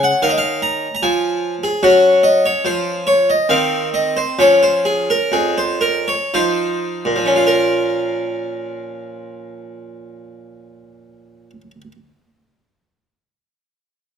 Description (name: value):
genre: classical, baroque-style suite movement for harpsichord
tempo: 53-76 BPM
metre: 3/4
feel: rubato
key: Bb minor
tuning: A4 = 440 Hz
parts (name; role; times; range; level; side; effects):
- harpsichord; solo; 0.0-11.9 s; F2 to Bb5; -14 LUFS; equal; none
room: moderate large studio reverb, RT60 1.4 s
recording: none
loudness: -14 LUFS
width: side -7 dB against mid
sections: 0.0-7.4 A section; 7.4-10.8 B section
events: slowing down 0.6-7.4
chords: 0.0 Db; 1.8 Gb5; 3.5 Cmadd11/Eb; 4.4 Bbm9/F; 6.3 F5; 7.4 Bbm